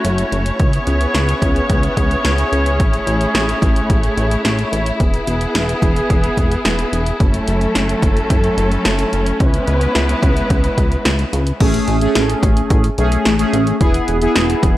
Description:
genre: synth-pop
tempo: 109 BPM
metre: 4/4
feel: straight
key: A major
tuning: A4 = 440 Hz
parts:
  - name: clear studio string section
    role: sustained chords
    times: 0.0-11.6 s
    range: F#3 to C#5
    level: -18 LUFS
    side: equal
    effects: none
  - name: chorused synth bass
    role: bass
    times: 0.0-14.8 s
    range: E1 to C#2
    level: -18 LUFS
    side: equal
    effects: none
  - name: punchy analog drum machine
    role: drums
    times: 0.0-14.8 s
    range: crash cymbal, hi-hat, kick drum, snare drum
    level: -17 LUFS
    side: equal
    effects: gated reverb
  - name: analog synth brass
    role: accompaniment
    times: 11.6-14.8 s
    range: A3 to G#4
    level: -16 LUFS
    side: equal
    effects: chorus
room: light reverb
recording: none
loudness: -13 LUFS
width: side -15 dB against mid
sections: 0.0-11.6 A section; 11.6-14.8 B section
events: none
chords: 0.0 F#m7; 0.6 C#m7; 2.8 Amaj7; 5.0 E; 7.2 F#m7; 9.4 C#m7; 11.6 Amaj7; 13.8 E

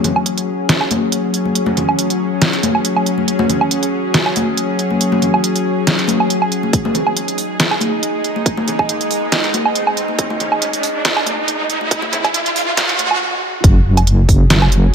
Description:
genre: deep dubstep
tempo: 139 BPM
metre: 4/4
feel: swing 54% on 16ths, half-time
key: unclear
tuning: A4 = 440 Hz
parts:
  - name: bowed-like drone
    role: sustained chords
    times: 0.0-14.9 s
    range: F#3 to G#4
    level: -19 LUFS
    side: left 1 dB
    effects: built-in reverb
  - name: dubstep drum kit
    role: drums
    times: 0.0-14.8 s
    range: hi-hat, snare drum, woodblock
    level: -17 LUFS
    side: right 2 dB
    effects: none
  - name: congas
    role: percussion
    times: 0.0-13.1 s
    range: none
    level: -22 LUFS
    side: left 2 dB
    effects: dub echo
  - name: electronic kick drum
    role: drums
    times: 6.7-14.4 s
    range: none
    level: -13 LUFS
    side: equal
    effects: none
  - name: riser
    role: sound effects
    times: 8.3-13.2 s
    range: none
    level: -21 LUFS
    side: right 1 dB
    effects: none
  - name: deep soft wobble bass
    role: bass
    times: 13.6-14.9 s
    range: F#1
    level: -12 LUFS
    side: equal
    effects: chorus
room: moderate lush hall reverb, RT60 1.9 s, digital ambience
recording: high-pass filter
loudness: -13 LUFS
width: side -7 dB against mid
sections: 0.0-13.6 A section; 13.6-14.9 B section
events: build-up 0.0-13.6; filter sweep 0.0-13.6; riser 8.3-13.2; stop 13.2-13.6; drop 13.6-14.9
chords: 0.0 F#5; 6.7 G#5; 13.6 F#5

